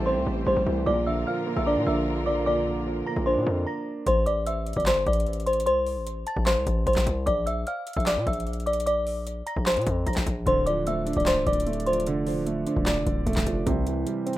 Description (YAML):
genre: hip hop, trap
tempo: 150 BPM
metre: 4/4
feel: half-time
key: A phrygian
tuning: A4 = 441 Hz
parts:
  - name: delicate synth tine bell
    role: melody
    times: 0.0-12.0 s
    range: C5 to Bb6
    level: -26 LUFS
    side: left 1 dB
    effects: chorus, low-pass filter, tape echo
  - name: dark concert grand piano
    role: accompaniment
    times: 0.0-4.1, 10.5-14.4 s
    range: A2 to D5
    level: -27 LUFS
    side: right 3 dB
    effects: low-pass filter
  - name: warm symphonic string section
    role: sustained chords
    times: 0.0-3.6 s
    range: D3 to C5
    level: -35 LUFS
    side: left 1 dB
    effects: none
  - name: distorted 808-style bass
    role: bass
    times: 0.0-14.1 s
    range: C1 to Bb2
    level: -29 LUFS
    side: equal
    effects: distortion
  - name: booming analog drum machine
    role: drums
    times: 4.1-14.4 s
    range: handclaps, hi-hat, kick drum, snare drum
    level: -29 LUFS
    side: equal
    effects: none
room: little or no reverb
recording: rough home demo mix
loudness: -23 LUFS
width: side -15 dB against mid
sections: 0.0-4.1 A section; 4.1-14.4 B section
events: stop 3.7-4.1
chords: 0.0 Am7; 0.9 Bb; 4.1 Am; 7.3 Bb; 10.5 Dm; 13.7 C